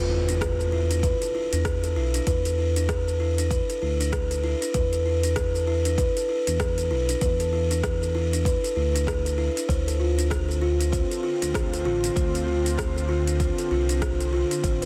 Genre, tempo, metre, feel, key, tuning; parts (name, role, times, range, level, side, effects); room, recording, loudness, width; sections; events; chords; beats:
organic downtempo; 97 BPM; 4/4; swing 59% on 16ths; A4 = 442 Hz
buzzing kalimba; arpeggios; 0.0-14.9 s; D4 to C5; -28 LUFS; equal; tape echo
smooth synth bass; bass; 0.0-14.9 s; A1 to E2; -28 LUFS; equal
impact; sound effects; 0.0-2.3 s; -39 LUFS; equal
deep house drum kit; drums; 0.3-14.9 s; hi-hat, rim click, shaker; -36 LUFS; equal; overdrive, studio reverb
electronic kick drum; drums; 0.4-14.8 s; -31 LUFS; equal; studio reverb
ethereal airy pad; sustained chords; 10.5-14.9 s; C3 to A4; -36 LUFS; equal; ensemble chorus, built-in reverb, sidechain pumping
light reverb; dense, heavily limited modern master; -25 LUFS; mono
0.0-14.9 A section
impact 0.0-2.3
0.0 E7sus4; 9.7 Dm7
0.41 1.03 1.65 | 2.27 2.89 3.50 4.12 | 4.74 5.36 5.98 6.60 | 7.22 7.83 8.45 9.07 | 9.69 10.31 10.93 11.54 | 12.16 12.78 13.40 14.02 | 14.64